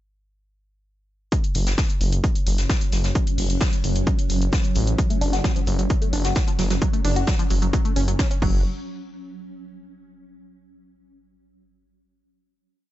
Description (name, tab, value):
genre	driving peak-time techno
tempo	131 BPM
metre	4/4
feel	straight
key	F# minor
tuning	A4 = 440 Hz
part	swarming drone	drone	2.2-8.7 s	F#3 to C#4	-31 LUFS	right 1 dB	built-in reverb, sidechain pumping
part	electronic kick drum	drums	1.3-8.5 s	none	-22 LUFS	equal	overdrive, small room ambience
part	jazz brush drum kit	drums	1.3-8.3 s	hi-hat, shaker, snare drum	-33 LUFS	left 2 dB	high-pass filter on hats, small room ambience, high-pass filter on snare, high-pass filter on perc, high-pass filter on room
part	techno drum kit	drums	1.3-8.5 s	crash cymbal, hi-hat	-33 LUFS	left 2 dB	overdrive, sidechain pumping on hats, small room ambience, sidechain pumping on cymbals
part	detuned saw bass	bass	1.5-8.6 s	F#1 to A1	-22 LUFS	equal	tube saturation, sidechain pumping
part	tight sequenced synth	riff	5.0-8.6 s	E#3 to F#4	-28 LUFS	right 1 dB	chorus, sidechain pumping, ping-pong delay
room	small room ambience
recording	nothing above 7.9 kHz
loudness	-19 LUFS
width	side -14 dB against mid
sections	1.3-8.6 groove; 8.6-10.5 final hit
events	none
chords	1.3 F#5; 8.6 N.C.